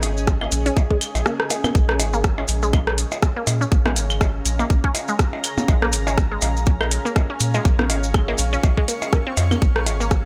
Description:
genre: minimal techno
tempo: 122 BPM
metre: 4/4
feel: swing 57% on 16ths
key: Bb minor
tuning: A4 = 442 Hz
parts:
  - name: round analog bass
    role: bass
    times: 0.0-10.3 s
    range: Ab1 to Bb2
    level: -25 LUFS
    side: equal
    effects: sidechain pumping
  - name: booming analog drum machine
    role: drums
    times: 0.0-10.2 s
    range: hi-hat, rim click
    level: -27 LUFS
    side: equal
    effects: none
  - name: electronic percussion blips, claves and rim click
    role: percussion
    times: 0.0-10.0 s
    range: none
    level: -27 LUFS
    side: equal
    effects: none
  - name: maracas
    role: percussion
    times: 0.0-10.2 s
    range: none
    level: -32 LUFS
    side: equal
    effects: none
  - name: granular cloud pad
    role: texture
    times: 0.0-10.3 s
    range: Db4 to Db6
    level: -32 LUFS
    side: equal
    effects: built-in reverb, sidechain pumping
  - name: electronic kick drum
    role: drums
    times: 0.3-10.2 s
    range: none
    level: -20 LUFS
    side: equal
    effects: overdrive
  - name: resonant blip pluck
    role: riff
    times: 0.4-10.0 s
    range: Ab3 to Db4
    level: -30 LUFS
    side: equal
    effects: phaser, sidechain pumping, dub echo
room: light reverb, digital ambience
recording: none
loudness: -20 LUFS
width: mono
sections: 0.0-1.8 A section; 1.8-10.3 B section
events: drop 1.8-10.3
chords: 0.0 Bbm7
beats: 0.27 0.77 1.26 | 1.75 2.24 2.73 3.23 | 3.72 4.21 4.70 5.19 | 5.68 6.18 6.67 7.16 | 7.65 8.14 8.63 9.13 | 9.62 10.11

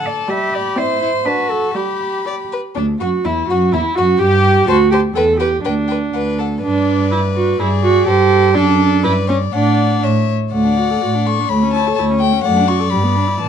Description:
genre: quick classical-period movement for string quartet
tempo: 124 BPM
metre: 2/4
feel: straight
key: G major, D major from 8.5 s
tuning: A4 = 435 Hz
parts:
  - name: warm violin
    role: melody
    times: 0.0-13.5 s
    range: D4 to C#6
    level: -22 LUFS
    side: left 12 dB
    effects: none
  - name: warm violin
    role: second line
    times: 0.0-13.5 s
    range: D4 to D5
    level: -22 LUFS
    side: left 5 dB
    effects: none
  - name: warm viola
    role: accompaniment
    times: 0.0-13.5 s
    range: D3 to A4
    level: -17 LUFS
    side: right 4 dB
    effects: none
  - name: dark cello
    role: bass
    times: 0.0-13.5 s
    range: D2 to E5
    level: -18 LUFS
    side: right 2 dB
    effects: none
room: light reverb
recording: dark, warm production, nothing above 10.5 kHz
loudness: -13 LUFS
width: side -8 dB against mid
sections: 0.0-2.8 A section; 2.8-10.5 B section; 10.5-13.5 A section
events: none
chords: 0.3 G; 0.8 C; 1.3 D; 1.8 G; 2.8 Dadd9; 3.7 Esus2; 4.2 N.C.; 4.7 D7; 5.1 Em; 5.6 G/D; 6.6 G; 7.6 E7/G; 8.1 Am7/G; 8.5 D/F#; 9.0 G; 9.5 D/A; 10.0 A; 10.5 D; 11.5 A/D; 12.4 D/F#; 12.9 Em7/G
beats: 0.29 | 0.77 1.25 | 1.75 2.26 | 2.76 3.24 | 3.72 4.20 | 4.67 5.15 | 5.64 6.13 | 6.62 7.12 | 7.59 8.07 | 8.55 9.03 | 9.53 10.03 | 10.53 11.02 | 11.50 11.97 | 12.45 12.92 | 13.41

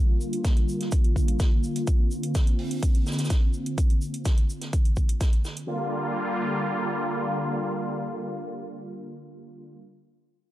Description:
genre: progressive house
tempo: 126 BPM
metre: 4/4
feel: straight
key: G minor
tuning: A4 = 440 Hz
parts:
  - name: filtered supersaw swell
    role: sustained chords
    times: 0.0-9.8 s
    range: D3 to F4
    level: -29 LUFS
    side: equal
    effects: sidechain pumping, low-pass filter
  - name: vintage drum kit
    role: drums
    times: 0.2-5.6 s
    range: hi-hat, shaker, snare drum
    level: -39 LUFS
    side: right 1 dB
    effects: sidechain pumping on hats, high-pass filter on hats, high-pass filter on snare, sidechain pumping on perc, high-pass filter on perc, high-pass filter on room
  - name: electronic hi-hat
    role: drums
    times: 0.3-5.7 s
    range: none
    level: -39 LUFS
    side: right 3 dB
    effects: none
  - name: electronic kick drum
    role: drums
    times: 0.4-5.3 s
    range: none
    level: -22 LUFS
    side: equal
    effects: none
room: little or no reverb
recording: dark, warm production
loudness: -23 LUFS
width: side -14 dB against mid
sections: 0.0-5.7 A section; 5.7-9.5 B section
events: filter sweep on supersaw synth 0.0-5.7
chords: 0.0 Gm7; 1.9 Bbadd9; 5.7 Gm7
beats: 0.45 0.92 1.40 | 1.87 2.35 2.83 3.30 | 3.78 4.25 4.73 5.21 | 5.68 6.16 6.64 7.11 | 7.59 8.06 8.54 9.02

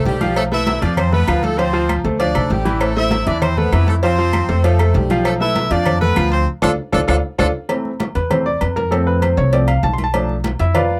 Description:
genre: latin, salsa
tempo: 196 BPM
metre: 4/4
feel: straight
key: A minor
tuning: A4 = 438 Hz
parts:
  - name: clear horn section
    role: melody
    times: 0.0-7.5 s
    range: G3 to E5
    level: -23 LUFS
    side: equal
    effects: none
  - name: clear concert grand piano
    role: accompaniment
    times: 0.0-11.0 s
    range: E3 to C6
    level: -22 LUFS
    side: equal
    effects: none
  - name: upright bass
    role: bass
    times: 0.0-11.0 s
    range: A1 to F2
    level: -21 LUFS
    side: equal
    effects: none
  - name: congas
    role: percussion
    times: 0.1-11.0 s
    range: none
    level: -27 LUFS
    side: equal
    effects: none
  - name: cowbell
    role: percussion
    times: 0.1-10.9 s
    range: none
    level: -28 LUFS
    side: equal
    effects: none
  - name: agogo bells and timbales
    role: percussion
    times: 0.2-10.9 s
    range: none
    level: -30 LUFS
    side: equal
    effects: none
  - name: claves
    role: percussion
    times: 0.4-7.5 s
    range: none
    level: -32 LUFS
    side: equal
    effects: none
room: moderate booth ambience, RT60 0.2 s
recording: none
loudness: -17 LUFS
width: mono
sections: 0.0-7.7 A section; 7.7-11.0 B section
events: band accent 6.5-7.7; drum fill 6.8-7.7; grand piano solo 7.7-11.0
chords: 0.4 Bm7b5; 1.6 Dm7; 2.8 Am; 4.0 F; 5.3 Bm7b5; 6.5 Dm; 7.7 Am; 8.9 F; 10.1 Bm7b5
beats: 0.06 | 0.37 0.67 0.98 1.28 | 1.59 1.89 2.20 2.50 | 2.81 3.12 3.42 3.73 | 4.03 4.34 4.64 4.95 | 5.25 5.56 5.86 6.17 | 6.47 6.78 7.08 7.39 | 7.70 8.00 8.31 8.61 | 8.92 9.22 9.53 9.83 | 10.14 10.45 10.75

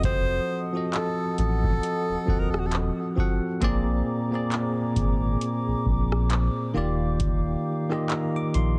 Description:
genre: contemporary R&B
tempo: 67 BPM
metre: 4/4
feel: swing 58% on 16ths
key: unclear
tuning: A4 = 440 Hz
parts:
  - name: clear alto saxophone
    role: melody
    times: 0.0-2.7 s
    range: Gb4 to C5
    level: -32 LUFS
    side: equal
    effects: none
  - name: barky tine electric piano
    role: accompaniment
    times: 0.0-8.8 s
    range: Bb2 to D6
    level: -30 LUFS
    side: equal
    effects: none
  - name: mellow large flute ensemble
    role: sustained chords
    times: 0.0-8.8 s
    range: Eb4 to Eb6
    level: -38 LUFS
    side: equal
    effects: none
  - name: sub bass with octave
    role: bass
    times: 0.0-8.8 s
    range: Eb1 to Bb1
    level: -28 LUFS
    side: equal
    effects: none
  - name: booming analog drum machine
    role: drums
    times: 0.0-8.8 s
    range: handclaps, hi-hat, kick drum, rim click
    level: -29 LUFS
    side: equal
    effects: none
room: little or no reverb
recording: heavily compressed radio sound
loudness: -26 LUFS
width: mono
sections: 0.0-8.8 A section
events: none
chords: 0.0 F7b9; 3.6 Bb9; 6.8 Ebmaj9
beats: | 0.04 0.93 1.83 2.72 | 3.62 4.51 5.41 6.30 | 7.20 8.10

